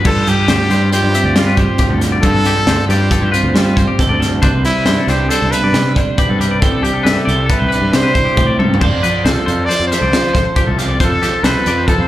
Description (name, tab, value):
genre	math rock and midwest emo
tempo	137 BPM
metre	5/4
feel	straight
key	unclear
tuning	A4 = 440 Hz
part	twelve-string electric guitar	accompaniment	0.0-12.1 s	G2 to D5	-18 LUFS	right 3 dB	none
part	twangy electric guitar	arpeggios	0.0-12.1 s	G4 to E5	-21 LUFS	left 6 dB	tremolo, slapback echo
part	fuzz fingered electric bass	bass	0.0-12.1 s	C2 to G3	-17 LUFS	equal	overdrive
part	crisp fusion drum kit	drums	0.0-12.0 s	crash cymbal, hi-hat, kick drum, snare drum, toms	-17 LUFS	equal	none
part	clear trumpet	melody	0.1-12.1 s	D4 to D5	-19 LUFS	equal	slapback echo
room	little or no reverb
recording	live gig heard through the venue's PA, club reverb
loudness	-11 LUFS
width	side -14 dB against mid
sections	0.0-12.1 A section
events	drum fill 8.6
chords	0.0 G9sus4; 4.4 Cmaj9; 8.8 F6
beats	| 0.05 0.48 0.92 1.36 1.80 | 2.23 2.67 3.11 3.55 3.99 | 4.43 4.86 5.30 5.74 6.18 | 6.62 7.06 7.50 7.94 8.37 | 8.81 9.25 9.69 10.13 10.56 | 11.00 11.44 11.88